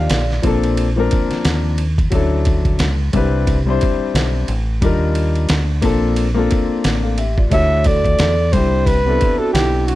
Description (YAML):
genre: hip hop, jazz-hop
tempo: 89 BPM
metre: 4/4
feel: swing 59% on 16ths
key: unclear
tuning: A4 = 439 Hz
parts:
  - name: mellow flugelhorn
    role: melody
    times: 0.0-0.5, 7.5-10.0 s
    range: F#4 to F5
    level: -18 LUFS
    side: equal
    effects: none
  - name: vibraphone with medium mallets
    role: second line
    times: 0.0-0.4, 7.5-10.0 s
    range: D4 to D5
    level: -25 LUFS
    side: right 8 dB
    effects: none
  - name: dark grand piano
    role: accompaniment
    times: 0.0-9.9 s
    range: F3 to F5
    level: -20 LUFS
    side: left 4 dB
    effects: none
  - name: deep dub fingered electric bass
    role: bass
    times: 0.0-10.0 s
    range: A1 to E2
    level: -18 LUFS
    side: equal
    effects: transformer saturation
  - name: trip hop sampler-style drum kit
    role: drums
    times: 0.1-10.0 s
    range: hi-hat, kick drum, ride cymbal, snare drum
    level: -20 LUFS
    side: equal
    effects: none
room: little or no reverb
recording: dry, close 1970s-style studio recording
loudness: -14 LUFS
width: side -16 dB against mid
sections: 0.0-10.0 A section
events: none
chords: 0.4 Bbmaj9; 2.1 Dmaj9; 3.1 Cmaj9; 4.8 Ebmaj9; 5.8 Bbmaj9; 7.5 Dadd9; 8.5 Cmaj9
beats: 0.10 0.78 1.45 | 2.13 2.80 3.48 4.15 | 4.82 5.50 6.17 6.85 | 7.52 8.19 8.87 9.54